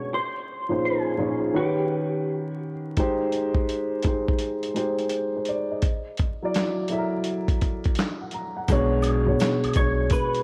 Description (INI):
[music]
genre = lo-fi hip hop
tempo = 84 BPM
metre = 4/4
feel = swing 65% on 16ths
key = unclear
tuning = A4 = 440 Hz
[part]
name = vintage hollow-body jazz guitar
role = melody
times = 0.0-2.6, 9.8-10.4 s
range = G4 to C#5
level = -31 LUFS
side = equal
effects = ensemble chorus, low-pass filter, diffuse ambient delay
[part]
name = dark upright piano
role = accompaniment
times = 0.0-10.4 s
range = A#2 to A#5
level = -27 LUFS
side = equal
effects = low-pass filter
[part]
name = dusty soul sampler-style drum kit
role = drums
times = 3.0-10.4 s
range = handclaps, hi-hat, kick drum, snare drum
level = -28 LUFS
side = equal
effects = overdrive
[part]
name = warm sub bass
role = bass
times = 8.7-10.1 s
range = B1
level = -29 LUFS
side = equal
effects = none
[part]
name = tube shaker and woodblock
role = percussion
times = 8.7-10.3 s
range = none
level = -41 LUFS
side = equal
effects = none
[sound]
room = moderate plate reverb, RT60 2.6 s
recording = dreamy mix soaked in reverb, vinyl crackle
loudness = -25 LUFS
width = mono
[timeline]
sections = 0.0-8.7 A section; 8.7-10.4 B section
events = none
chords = 0.1 A#m11; 1.5 D#7alt; 3.0 G#maj7; 5.8 F#7b13; 8.7 Bm69